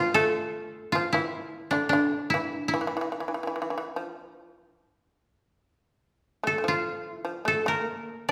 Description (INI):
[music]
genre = japanese traditional, Japanese chamber music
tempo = 74 BPM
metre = 4/4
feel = rubato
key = A miyako bushi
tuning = A4 = 436 Hz
[part]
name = koto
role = melody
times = 0.0-8.3 s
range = D4 to Bb4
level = -29 LUFS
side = equal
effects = none
[part]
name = shamisen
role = second line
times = 0.0-8.3 s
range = D3 to Bb3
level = -34 LUFS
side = equal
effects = none
[sound]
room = wet recital hall reverb, RT60 1.5 s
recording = recorded in a church or concert hall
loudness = -28 LUFS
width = mono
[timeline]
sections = 0.0-8.3 A section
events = none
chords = none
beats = 0.33 1.13 1.93 | 2.74 3.54 4.35 5.18 | 6.02 6.86 7.68